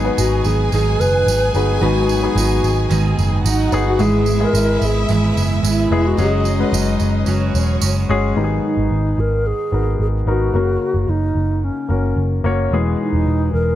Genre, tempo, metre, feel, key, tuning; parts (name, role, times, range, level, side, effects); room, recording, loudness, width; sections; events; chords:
piano-driven pop; 110 BPM; 4/4; straight; G# minor; A4 = 440 Hz
warm studio violin section; second line; 0.0-8.3 s; C#4 to G#5; -26 LUFS; equal
warm concert grand piano; accompaniment; 0.0-13.8 s; G#2 to C#5; -21 LUFS; left 4 dB
picked steel-string acoustic guitar; riff; 0.0-8.9 s; G#2 to G#4; -24 LUFS; right 5 dB
vintage muted picked electric bass; bass; 0.0-13.8 s; E1 to G#1; -18 LUFS; equal
mellow hollow alto flute; melody; 0.2-13.8 s; C#4 to B4; -21 LUFS; equal
tambourine; percussion; 0.2-7.9 s; -29 LUFS; right 9 dB
small room ambience; -15 LUFS; side -12 dB against mid
0.0-8.4 A section; 8.4-13.8 B section
0.0 G#m7; 4.0 E/G#; 6.2 F#sus2; 8.4 G#m7; 10.5 F#; 12.7 E